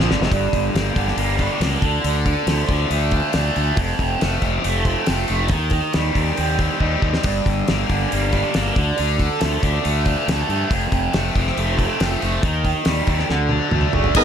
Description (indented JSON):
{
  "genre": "classic rock",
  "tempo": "139 BPM",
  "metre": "4/4",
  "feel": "straight",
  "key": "G minor",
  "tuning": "A4 = 440 Hz",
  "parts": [
    { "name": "overdriven electric guitar", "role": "riff", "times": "0.0-14.2 s", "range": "F2 to G4", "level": "-24 LUFS", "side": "left 14 dB", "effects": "none" },
    { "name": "overdriven electric guitar", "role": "riff", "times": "0.0-14.2 s", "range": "F2 to Eb4", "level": "-24 LUFS", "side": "right 13 dB", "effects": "phaser" },
    { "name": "fuzz fingered electric bass", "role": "bass", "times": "0.0-14.2 s", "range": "F1 to G2", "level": "-22 LUFS", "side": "equal", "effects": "overdrive" },
    { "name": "damped 70s drum kit", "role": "drums", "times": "0.0-14.2 s", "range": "crash cymbal, hi-hat, kick drum, snare drum, splash cymbal, toms", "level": "-23 LUFS", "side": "equal", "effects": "none" },
    { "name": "bright tonewheel organ", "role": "sustained chords", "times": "14.2 s", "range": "B3 to Bb4", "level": "-13 LUFS", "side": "right 1 dB", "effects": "overdrive, fast rotary speaker" }
  ],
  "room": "small room ambience",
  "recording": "none",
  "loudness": "-17 LUFS",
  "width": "side -8 dB against mid",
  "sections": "0.3-14.2 A section",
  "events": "drum fill 0.0-0.3, 6.8-7.2, 13.3-14.2",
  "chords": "0.3 Gm; 1.8 Dm; 3.8 F; 5.5 Cm/Eb; 7.2 Gm; 8.8 Dm; 10.7 F; 12.4 Cm/Eb; 13.3 D"
}